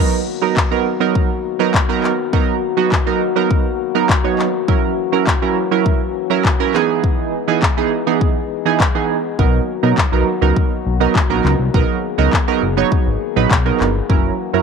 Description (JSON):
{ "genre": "dance-pop", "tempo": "102 BPM", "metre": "4/4", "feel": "straight", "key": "B major", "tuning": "A4 = 440 Hz", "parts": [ { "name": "chorused retro synth keys", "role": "accompaniment", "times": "0.0-14.6 s", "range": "E3 to C#5", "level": "-17 LUFS", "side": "right 13 dB", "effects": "sidechain pumping" }, { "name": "mellow French horn section", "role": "sustained chords", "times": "0.0-14.6 s", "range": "D#3 to G#4", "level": "-24 LUFS", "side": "left 17 dB", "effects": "sidechain pumping" }, { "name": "pop drum kit", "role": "drums", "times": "0.6-14.2 s", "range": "handclaps, kick drum", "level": "-17 LUFS", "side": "left 2 dB", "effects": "none" }, { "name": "chorused synth bass", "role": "bass", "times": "9.4-14.6 s", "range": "F#1 to B2", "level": "-18 LUFS", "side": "left 2 dB", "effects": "sidechain pumping" } ], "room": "light reverb", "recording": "1960s-style stereo with parts hard left and right", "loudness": "-14 LUFS", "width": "side -6 dB against mid", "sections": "0.0-14.6 A section", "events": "none", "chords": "0.0 Bmaj7; 4.7 F#7; 6.7 Emaj7; 9.4 Bmaj7; 14.1 F#7" }